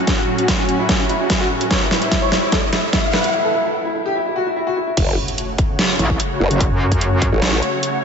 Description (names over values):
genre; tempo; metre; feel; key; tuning
heavy wobble dubstep; 147 BPM; 4/4; half-time; F# phrygian; A4 = 439 Hz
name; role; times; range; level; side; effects
clear grand piano; melody; 0.0-4.9 s; C#4 to C#5; -21 LUFS; left 1 dB; lush chorus, ping-pong delay
supersaw chords; sustained chords; 0.0-8.0 s; A2 to C#5; -23 LUFS; equal; lush chorus, sidechain pumping, low-pass filter
riser and impact; sound effects; 1.3-6.6 s; none; -28 LUFS; equal; none
dubstep drum kit; drums; 0.1-7.9 s; crash cymbal, hi-hat, snare drum; -21 LUFS; right 1 dB; overdrive
electronic kick drum; drums; 0.1-7.3 s; none; -21 LUFS; equal; overdrive
formant-sweep wobble bass; bass; 5.0-7.6 s; F#1 to A1; -18 LUFS; equal; chorus, overdrive
metallic wobble bass; bass; 6.0-7.3 s; F#1 to F#2; -18 LUFS; equal; chorus, overdrive
room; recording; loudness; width
wet church reverb, RT60 3.0 s; dreamy mix soaked in reverb, nothing above 7.9 kHz; -15 LUFS; side -6 dB against mid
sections
0.0-5.0 A section; 5.0-8.0 B section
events
build-up 0.0-5.0; drum fill 0.0-3.3; riser 1.3-3.3; break 3.3-5.0; drop 5.0-8.0; impact 5.0-6.6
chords
0.0 F#m; 1.7 A7; 5.0 F#m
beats
| 0.07 0.48 0.89 1.30 | 1.71 2.12 2.52 2.93 | 3.34 3.75 4.16 4.56 | 4.97 5.38 5.79 6.20 | 6.61 7.01 7.42 7.83